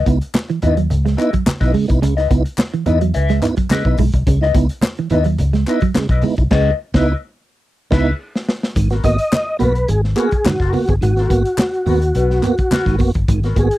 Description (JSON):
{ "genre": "funk", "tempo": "107 BPM", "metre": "4/4", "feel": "straight", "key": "G# minor", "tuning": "A4 = 440 Hz", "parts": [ { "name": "mellow electric guitar", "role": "accompaniment", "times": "0.0-13.8 s", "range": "B3 to E5", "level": "-23 LUFS", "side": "left 7 dB", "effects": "wah" }, { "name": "vintage muted fingered electric bass", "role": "bass", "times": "0.0-13.7 s", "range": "F#1 to E2", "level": "-17 LUFS", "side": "equal", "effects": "none" }, { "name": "clean electric guitar", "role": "riff", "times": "0.1-6.3 s", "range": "E3 to C#4", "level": "-20 LUFS", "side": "right 7 dB", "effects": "analog chorus" }, { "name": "mellow tonewheel organ", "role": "stabs", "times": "0.1-13.7 s", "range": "G#2 to F#4", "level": "-19 LUFS", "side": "right 4 dB", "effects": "chorus vibrato, fast rotary speaker" }, { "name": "crunchy breakbeat drum kit", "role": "drums", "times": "0.1-13.8 s", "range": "crash cymbal, hi-hat, kick drum, snare drum", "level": "-18 LUFS", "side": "equal", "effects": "none" }, { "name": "congas", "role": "percussion", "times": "0.1-13.7 s", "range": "none", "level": "-26 LUFS", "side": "right 2 dB", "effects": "none" }, { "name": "group handclap", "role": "percussion", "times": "0.3-12.9 s", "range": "none", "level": "-28 LUFS", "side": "left 5 dB", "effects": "none" }, { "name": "mellow tonewheel organ", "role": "melody", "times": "9.0-13.8 s", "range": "F#4 to D#5", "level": "-19 LUFS", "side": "left 1 dB", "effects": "chorus vibrato" } ], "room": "little or no reverb", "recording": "dry, close 1970s-style studio recording", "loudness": "-14 LUFS", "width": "side -15 dB against mid", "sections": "0.0-8.8 A section; 8.8-13.8 B section", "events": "band accent 6.5-8.8; drum fill 7.6-8.8", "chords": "0.0 C#m9; 8.8 G#m9" }